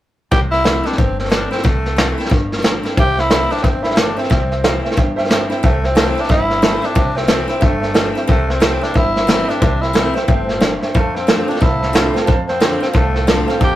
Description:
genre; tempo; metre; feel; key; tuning
rockabilly; 180 BPM; 4/4; swing 62% on 8ths; C major; A4 = 442 Hz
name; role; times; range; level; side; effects
growling tenor saxophone; melody; 0.3-13.8 s; A3 to G4; -20 LUFS; left 1 dB; none
picked steel-string acoustic guitar; accompaniment; 0.3-13.8 s; F2 to F4; -23 LUFS; left 1 dB; none
upright bass; bass; 0.3-13.8 s; G1 to F2; -23 LUFS; equal; none
vintage brush drum kit; drums; 0.3-13.7 s; hi-hat, kick drum, snare drum; -16 LUFS; equal; none
warm upright piano; accompaniment; 3.0-13.7 s; C5 to A5; -23 LUFS; right 2 dB; none
room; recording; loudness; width
light reverb; rough rehearsal-room recording, tube saturation; -13 LUFS; side -14 dB against mid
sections
0.3-5.6 A section; 5.6-13.8 B section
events
none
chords
0.3 C6; 10.9 F6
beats
| 0.31 0.64 0.97 1.31 | 1.64 1.97 2.31 2.64 | 2.97 3.30 3.63 3.97 | 4.30 4.63 4.96 5.29 | 5.63 5.96 6.29 6.62 | 6.96 7.29 7.62 7.95 | 8.29 8.62 8.95 9.28 | 9.61 9.95 10.28 10.61 | 10.94 11.28 11.61 11.94 | 12.27 12.61 12.94 13.27 | 13.61

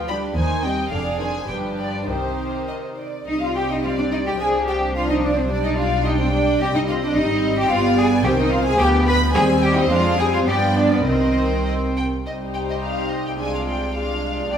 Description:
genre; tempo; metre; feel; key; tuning
quick classical-period movement for string orchestra; 98-111 BPM; 2/4; rubato; C minor; A4 = 440 Hz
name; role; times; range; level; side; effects
warm symphonic violin section; second line; 0.0-14.6 s; Eb4 to B5; -26 LUFS; equal; none
warm studio viola section; accompaniment; 0.0-14.6 s; D3 to Eb4; -23 LUFS; equal; none
rich symphonic cello section; bass; 0.0-14.6 s; D2 to B4; -24 LUFS; equal; none
warm symphonic double bass section; bass; 0.0-14.6 s; F1 to G2; -25 LUFS; equal; none
warm studio violin section; melody; 0.1-14.6 s; B4 to B5; -28 LUFS; equal; none
room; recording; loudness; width
wet stone room reverb, RT60 1.2 s; heard from further back in the room; -18 LUFS; side -8 dB against mid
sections
0.0-3.3 A section; 3.3-12.3 B section; 12.3-14.6 B section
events
none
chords
0.4 Cm/Eb; 0.9 Ddim/F; 1.5 G7; 2.1 Cm; 4.4 Dm7b5/C; 5.5 G/B; 6.6 Cm; 7.7 G7; 8.3 Cm; 8.8 G7/D; 9.3 Cm/Eb; 9.9 Ddim/F; 10.5 G7; 11.1 Cm; 13.4 Dm7b5/C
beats
0.36 | 0.91 1.48 | 2.08 2.68 | 3.27 3.84 | 4.40 4.96 | 5.52 6.06 | 6.62 7.17 | 7.71 8.25 | 8.80 9.34 | 9.90 10.47 | 11.06 11.67 | 12.27 12.84 | 13.40 13.96 | 14.52

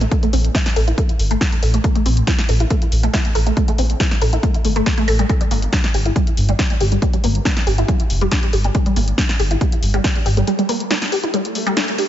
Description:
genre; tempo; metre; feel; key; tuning
driving peak-time techno; 139 BPM; 4/4; straight; A phrygian; A4 = 444 Hz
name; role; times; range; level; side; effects
resonant blip pluck; riff; 0.0-12.0 s; G3 to A4; -21 LUFS; equal; phaser, overdrive, ensemble chorus, sidechain pumping, tape echo
dark detuned saw bass; bass; 0.0-10.4 s; F1 to A1; -17 LUFS; equal; tube saturation, sidechain pumping
punchy analog drum machine; drums; 0.0-12.1 s; hi-hat, snare drum; -24 LUFS; left 1 dB; none
electronic kick drum; drums; 0.1-10.1 s; none; -19 LUFS; equal; overdrive
swell; sound effects; 11.5-12.1 s; none; -25 LUFS; left 1 dB; none
room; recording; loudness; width
light reverb, digital ambience; nothing above 7.7 kHz; -15 LUFS; side -11 dB against mid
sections
0.0-12.1 A section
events
filter sweep on synth arpeggio sound 0.0-12.1; swell 11.5-12.1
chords
none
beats
| 0.12 0.55 0.98 1.41 | 1.84 2.27 2.71 3.14 | 3.57 4.00 4.43 4.86 | 5.29 5.73 6.16 6.59 | 7.02 7.45 7.88 8.32 | 8.75 9.18 9.61 10.04 | 10.47 10.91 11.34 11.77

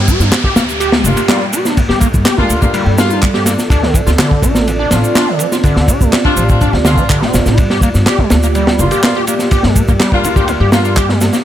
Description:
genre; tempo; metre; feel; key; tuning
breakbeat, breaks; 124 BPM; 4/4; straight; unclear; A4 = 440 Hz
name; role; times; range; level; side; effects
dark analog pad; sustained chords; 0.4-11.4 s; Bb3 to D5; -20 LUFS; right 2 dB; chorus, sidechain pumping
overdriven acid bass; riff; 0.0-11.4 s; D2 to G4; -17 LUFS; equal; distortion, wide subtle chorus, cassette tape, digital delay
upright bass; bass; 0.0-11.3 s; G1 to G2; -16 LUFS; equal; none
downlifter; sound effects; 0.0-3.7 s; none; -23 LUFS; equal; none
crunchy breakbeat drum kit; drums; 0.1-11.4 s; kick drum, ride cymbal, snare drum; -14 LUFS; equal; none
electronic shaker and handclaps; drums; 0.1-11.4 s; none; -22 LUFS; right 1 dB; none
mellow horn section; stabs; 1.1-10.9 s; G3 to F4; -19 LUFS; left 2 dB; digital delay
room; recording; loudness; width
studio reverb; none; -10 LUFS; side -11 dB against mid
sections
0.0-11.4 A section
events
none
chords
0.0 Gm7; 3.7 Dm7; 7.6 Gm7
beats
0.32 0.81 1.29 | 1.77 2.26 2.74 3.23 | 3.71 4.19 4.68 5.16 | 5.64 6.13 6.61 7.10 | 7.58 8.06 8.55 9.03 | 9.52 10.00 10.48 10.97

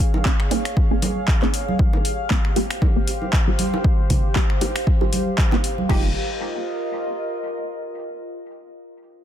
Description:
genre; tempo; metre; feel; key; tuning
deep house; 117 BPM; 4/4; swing 56% on 16ths; F minor; A4 = 440 Hz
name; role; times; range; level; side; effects
deep house drum kit; drums; 0.0-6.0 s; crash cymbal, finger snaps, handclaps, hi-hat; -28 LUFS; left 1 dB; overdrive
electronic kick drum; drums; 0.0-6.0 s; none; -19 LUFS; equal; overdrive
warbly tape-like pad; texture; 0.0-7.9 s; F4 to F5; -28 LUFS; equal; chorus, built-in reverb, sidechain pumping
bongos and congas; percussion; 0.1-5.9 s; none; -27 LUFS; right 2 dB; none
filtered dub chord stab; stabs; 0.3-6.1 s; G3 to Ab4; -27 LUFS; right 2 dB; phaser, sidechain pumping, tape echo
warm sub bass; bass; 5.9-6.1 s; F1; -28 LUFS; equal; none
room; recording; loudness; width
little or no reverb; dense, heavily limited modern master; -18 LUFS; side -10 dB against mid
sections
0.0-5.9 A section; 5.9-7.9 B section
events
filter sweep on synth stab 0.0-5.9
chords
0.0 Bbm11; 1.8 C7sus4; 5.9 F7sus4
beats
0.25 0.77 1.28 | 1.79 2.31 2.82 3.33 | 3.84 4.36 4.87 5.38 | 5.90 6.41 6.92 7.43

